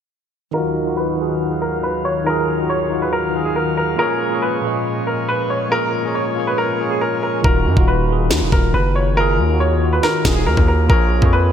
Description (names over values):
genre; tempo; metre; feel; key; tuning
hip hop, drill; 139 BPM; 4/4; half-time; Eb minor; A4 = 440 Hz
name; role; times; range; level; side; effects
warm upright piano; melody; 0.5-11.5 s; Ab4 to Db5; -20 LUFS; equal; low-pass filter, ping-pong delay
tine electric piano; accompaniment; 0.5-11.5 s; Bb2 to Eb5; -21 LUFS; equal; medium stereo tremolo, low-pass filter
pipe organ, principal chorus; sustained chords; 0.5-7.4 s; Eb2 to F5; -26 LUFS; equal; low-pass filter
distorted 808-style bass; bass; 7.4-11.5 s; Eb1 to Gb2; -17 LUFS; equal; distortion
drill drum kit; drums; 7.4-11.3 s; kick drum, snare drum; -17 LUFS; equal; gated reverb
room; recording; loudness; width
moderate lush hall reverb, RT60 2.1 s; bright 1980s-style digital production; -15 LUFS; side -8 dB against mid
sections
0.5-7.4 A section; 7.4-11.5 B section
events
filter sweep 0.5-7.4; hi-hats muted 7.4-11.5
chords
0.5 Ebmadd9; 4.0 Bbm7; 7.4 Ebmadd9; 10.9 Bbm7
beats
| 0.54 0.97 1.40 1.83 | 2.26 2.69 3.13 3.56 | 3.99 4.42 4.85 5.29 | 5.72 6.15 6.58 7.01 | 7.44 7.88 8.31 8.74 | 9.17 9.60 10.03 10.46 | 10.90 11.33